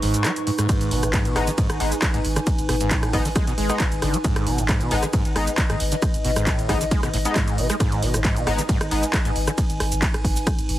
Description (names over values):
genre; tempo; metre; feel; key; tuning
driving peak-time techno; 135 BPM; 4/4; straight; G# minor; A4 = 441 Hz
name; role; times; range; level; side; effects
overdriven acid bass; riff; 0.0-9.5 s; G#2 to G#3; -26 LUFS; equal; distortion, wide subtle chorus, sidechain pumping, tape echo
saturated sub bass; bass; 0.0-10.8 s; G#1; -27 LUFS; equal; overdrive, sidechain pumping, low-pass filter
punchy analog drum machine; drums; 0.0-10.8 s; handclaps, hi-hat, ride cymbal, rim click, shaker; -27 LUFS; right 1 dB; sidechain pumping on hats, sidechain pumping on perc, sidechain pumping on cymbals
warbly tape-like pad; texture; 0.0-10.8 s; D#4 to C#6; -28 LUFS; equal; chorus, built-in reverb, sidechain pumping
electronic kick drum; drums; 0.7-10.6 s; none; -23 LUFS; equal; overdrive
sync-sweep polysynth; stabs; 1.4-9.0 s; G#3 to D#4; -28 LUFS; left 3 dB; ensemble chorus, sidechain pumping, tape echo
room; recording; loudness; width
little or no reverb; heavily compressed radio sound; -19 LUFS; side -14 dB against mid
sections
0.0-10.8 A section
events
none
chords
0.0 G#m